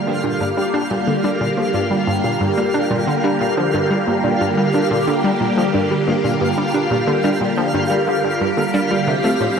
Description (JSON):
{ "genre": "ambient, sequencer-driven space music", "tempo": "90 BPM", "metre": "4/4", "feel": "straight", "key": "G minor", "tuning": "A4 = 440 Hz", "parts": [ { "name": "phased string machine", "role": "sustained chords", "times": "0.0-9.6 s", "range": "D3 to G4", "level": "-19 LUFS", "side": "equal", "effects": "ensemble chorus, phaser" }, { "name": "soft round pluck", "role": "arpeggios", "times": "0.0-9.6 s", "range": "G3 to G4", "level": "-24 LUFS", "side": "right 2 dB", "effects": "chorus, auto-pan, ping-pong delay" }, { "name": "analog pluck", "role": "riff", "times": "0.0-9.6 s", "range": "G2 to D4", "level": "-22 LUFS", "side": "equal", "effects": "chorus, ping-pong delay" }, { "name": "twinkling granular texture", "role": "texture", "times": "0.0-9.6 s", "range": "F4 to F5", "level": "-24 LUFS", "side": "equal", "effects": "built-in reverb" } ], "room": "wet plate reverb, RT60 2.8 s", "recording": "dreamy mix soaked in reverb", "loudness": "-16 LUFS", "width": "side -6 dB against mid", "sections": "0.0-9.6 A section", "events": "none", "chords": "0.0 Gm; 9.1 Fsus2", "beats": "0.41 | 1.08 1.74 2.41 3.08 | 3.74 4.41 5.08 5.74 | 6.41 7.08 7.74 8.41 | 9.08" }